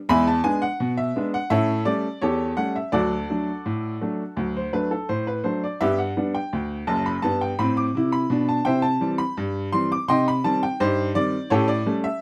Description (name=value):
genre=ragtime piano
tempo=84 BPM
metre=2/4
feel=straight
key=G major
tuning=A4 = 440 Hz
part: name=clear upright piano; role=solo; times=0.1-12.2 s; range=F#1 to D6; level=-23 LUFS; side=equal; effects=none
room=moderate small room reverb, RT60 0.5 s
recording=rough home demo mix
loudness=-24 LUFS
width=mono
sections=0.0-12.2 A section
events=none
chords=0.1 E7; 1.5 A7; 2.9 D; 5.8 G; 8.7 C; 10.1 Cm; 11.5 A7